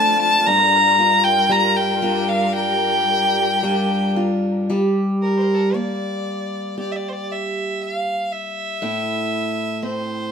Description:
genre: celtic folk, Celtic slow air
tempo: 58 BPM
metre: 4/4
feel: rubato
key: G dorian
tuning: A4 = 440 Hz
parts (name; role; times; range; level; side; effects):
- rich fiddle; melody; 0.0-10.3 s; A4 to Bb5; -18 LUFS; left 1 dB; none
- picked steel-string acoustic guitar; accompaniment; 0.0-10.3 s; G2 to G4; -22 LUFS; equal; none
- clear studio string section; sustained chords; 0.0-4.7 s; G3 to D5; -26 LUFS; equal; none
room: moderate stone room reverb, RT60 1.1 s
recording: band playing live in one room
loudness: -17 LUFS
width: side -6 dB against mid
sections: 0.0-4.7 A section; 4.7-10.3 B section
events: none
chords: 0.5 Gm7; 4.7 Gm; 8.8 Am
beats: | 0.47 1.49 2.54 3.62 | 4.69 5.75 6.78 7.80 | 8.81 9.82

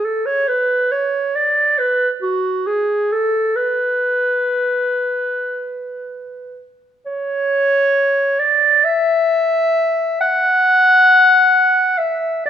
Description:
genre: classical, free, expressive piece for unaccompanied clarinet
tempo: 68 BPM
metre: 4/4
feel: rubato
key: unclear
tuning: A4 = 441 Hz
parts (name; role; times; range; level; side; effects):
- dark clarinet; solo; 0.0-12.5 s; F#4 to F#5; -14 LUFS; equal; none
room: moderate recital hall reverb, RT60 1.7 s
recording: minimal, uncompressed stereo recording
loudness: -13 LUFS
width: side -9 dB against mid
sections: 0.0-12.5 A section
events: none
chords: none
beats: | 0.04 0.92 1.80 2.68 | 3.56 4.44 5.30 6.19 | 7.06 7.94 8.83 9.74 | 10.64 11.52 12.45

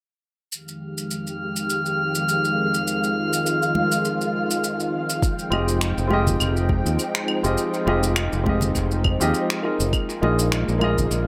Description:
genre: sunset chillout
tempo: 102 BPM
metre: 4/4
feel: swing 55% on 16ths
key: F minor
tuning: A4 = 439 Hz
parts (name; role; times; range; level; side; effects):
- soft string machine; sustained chords; 0.5-11.3 s; F2 to G5; -28 LUFS; equal; ensemble chorus
- electronic shaker, claves and finger snaps; drums; 0.5-11.2 s; none; -30 LUFS; equal; analog delay
- drifting glass-harmonics texture; texture; 1.1-5.2 s; F6; -28 LUFS; equal; chorus, built-in reverb
- congas; percussion; 3.8-11.1 s; none; -31 LUFS; equal; none
- electronic kick drum; drums; 5.2-11.1 s; none; -26 LUFS; equal; none
- warm baby grand piano; accompaniment; 5.5-11.3 s; Bb3 to Eb5; -27 LUFS; equal; analog delay
- modern bright fingered electric bass; bass; 5.5-11.3 s; F1 to Eb2; -25 LUFS; equal; none
room: wet spring reverb, RT60 2.1 s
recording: echo-heavy mix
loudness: -22 LUFS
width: mono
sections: 0.5-5.2 A section; 5.2-11.3 B section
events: filter sweep on string machine 0.5-5.2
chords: 0.5 Fm9; 9.9 Bb7sus4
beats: | 0.52 1.11 1.70 2.28 | 2.87 3.46 4.05 4.64 | 5.22 5.81 6.40 6.99 | 7.58 8.17 8.75 9.34 | 9.93 10.52 11.11

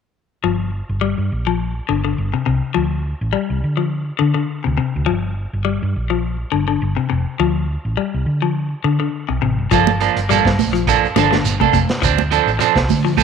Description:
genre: afrobeat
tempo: 104 BPM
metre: 4/4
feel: swing 54% on 16ths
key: G minor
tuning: A4 = 439 Hz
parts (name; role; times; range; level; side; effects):
- clean electric guitar; arpeggios; 0.4-13.2 s; C3 to G3; -20 LUFS; left 10 dB; none
- hollow-body short-scale fingered electric bass; bass; 0.4-13.2 s; F1 to D3; -21 LUFS; right 1 dB; none
- electric guitar at the edge of break-up; stabs; 9.7-13.2 s; F3 to A4; -16 LUFS; right 12 dB; none
- crunchy breakbeat drum kit; drums; 9.7-13.2 s; hi-hat, kick drum, snare drum; -22 LUFS; equal; none
- shekere; percussion; 9.7-13.2 s; none; -26 LUFS; right 8 dB; none
- congas; percussion; 9.9-13.2 s; none; -21 LUFS; right 17 dB; none
room: moderate spring reverb, RT60 2.1 s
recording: 1960s-style stereo with parts hard left and right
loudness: -16 LUFS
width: side -6 dB against mid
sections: 0.4-13.2 A section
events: none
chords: 0.4 Gm7; 2.8 Dm7; 5.1 Gm7; 7.4 Dm7; 9.7 Gm9; 12.0 Dm7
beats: | 0.45 1.03 1.61 2.19 | 2.77 3.35 3.92 4.50 | 5.08 5.66 6.24 6.82 | 7.40 7.98 8.56 9.13 | 9.71 10.29 10.87 11.45 | 12.03 12.60 13.18

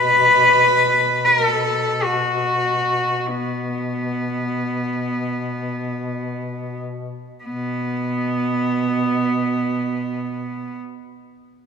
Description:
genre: caucasian folk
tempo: free time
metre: none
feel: none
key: unclear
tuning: A4 = 441 Hz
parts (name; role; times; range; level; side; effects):
- rich cello; melody; 0.0-10.8 s; B3 to B4; -18 LUFS; equal; none
- dark duduk; drone; 0.0-10.8 s; B2; -28 LUFS; left 3 dB; none
room: moderate concert hall reverb, RT60 2.5 s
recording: minimal, uncompressed stereo recording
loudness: -18 LUFS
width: side -6 dB against mid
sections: 0.0-7.5 A section; 7.5-11.7 B section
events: slowing down 0.0-7.5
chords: none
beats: free time

